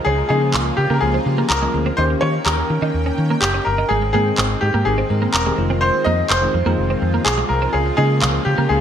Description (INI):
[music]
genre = dance-pop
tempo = 125 BPM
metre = 4/4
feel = straight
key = unclear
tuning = A4 = 440 Hz
[part]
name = bright grand piano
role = melody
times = 0.0-8.8 s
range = G4 to Eb5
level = -20 LUFS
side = left 1 dB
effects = none
[part]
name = supersaw pad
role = sustained chords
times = 0.0-8.8 s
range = Db3 to G5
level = -27 LUFS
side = right 1 dB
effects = analog chorus
[part]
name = twelve-string electric guitar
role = riff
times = 0.1-8.7 s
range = Ab3 to G4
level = -26 LUFS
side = right 5 dB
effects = ensemble chorus
[part]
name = vintage muted fingered electric bass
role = bass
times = 0.1-8.8 s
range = E1 to Eb3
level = -20 LUFS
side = equal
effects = none
[part]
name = bell-like tine electric piano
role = accompaniment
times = 0.3-8.8 s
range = Db3 to G5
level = -24 LUFS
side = left 5 dB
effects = lush chorus
[part]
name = electronic handclaps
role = drums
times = 0.5-8.3 s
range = none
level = -21 LUFS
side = right 1 dB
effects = gated reverb
[sound]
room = moderate plate reverb, RT60 0.9 s, digital ambience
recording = bright 1980s-style digital production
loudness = -15 LUFS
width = side -9 dB against mid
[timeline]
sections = 0.0-8.8 A section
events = none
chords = 0.1 Db6; 2.0 Eb7; 3.9 Abmaj7; 5.6 Fm7; 7.7 Db6